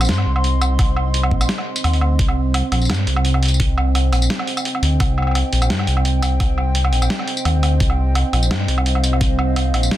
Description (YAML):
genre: half-time drum and bass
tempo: 171 BPM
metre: 4/4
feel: swing 53% on 16ths, half-time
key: C minor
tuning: A4 = 440 Hz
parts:
  - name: dark analog pad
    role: sustained chords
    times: 0.0-10.0 s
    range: C4 to C6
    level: -25 LUFS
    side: right 1 dB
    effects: lush chorus, sidechain pumping
  - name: dark detuned saw bass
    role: bass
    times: 0.0-9.9 s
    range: Bb1 to G2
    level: -17 LUFS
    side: equal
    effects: tube saturation
  - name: boom bap sampler-style drum kit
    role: drums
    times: 0.0-10.0 s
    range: hi-hat, snare drum, tambourine, woodblock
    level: -22 LUFS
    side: right 1 dB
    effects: none
  - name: electronic kick drum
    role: drums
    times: 0.8-9.3 s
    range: none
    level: -18 LUFS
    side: equal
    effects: overdrive
room: little or no reverb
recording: dense, heavily limited modern master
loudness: -15 LUFS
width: side -14 dB against mid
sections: 0.0-2.2 A section; 2.2-10.0 A section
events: drop 0.0-2.2, 2.2-10.0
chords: 0.0 Cm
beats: 0.09 0.44 | 0.79 1.14 1.49 1.84 | 2.19 2.54 2.89 3.25 | 3.60 3.95 4.30 4.65 | 5.00 5.35 5.70 6.05 | 6.40 6.75 7.11 7.46 | 7.81 8.16 8.51 8.86 | 9.21 9.56 9.91